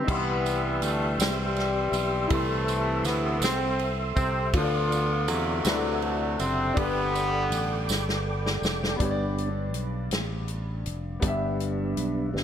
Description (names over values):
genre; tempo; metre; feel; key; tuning
slow gospel; 54 BPM (dotted quarters); 6/8; straight; unclear; A4 = 440 Hz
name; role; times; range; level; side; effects
mellow horn section; melody; 0.0-8.3 s; C3 to F4; -28 LUFS; left 1 dB; digital delay
warm grand piano; accompaniment; 0.0-12.4 s; G2 to C6; -33 LUFS; left 3 dB; lush chorus
percussive tonewheel organ; sustained chords; 0.0-12.4 s; G3 to E6; -32 LUFS; right 1 dB; slow rotary speaker, chorus vibrato
fingered electric bass; bass; 0.1-12.4 s; F1 to E2; -31 LUFS; equal; none
natural country drum kit; drums; 0.1-12.4 s; crash cymbal, hi-hat, kick drum, ride cymbal, snare drum; -31 LUFS; equal; none
tambourine; percussion; 0.5-9.0 s; none; -36 LUFS; right 11 dB; none
room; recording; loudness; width
moderate plate reverb, RT60 3.2 s; bright 1980s-style digital production; -24 LUFS; side -9 dB against mid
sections
0.1-9.0 A section; 9.0-12.4 B section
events
drum fill 7.9-9.0; tonewheel organ solo 9.0-12.4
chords
0.1 C; 2.3 Am/C; 4.5 Dm; 5.7 D13; 6.8 G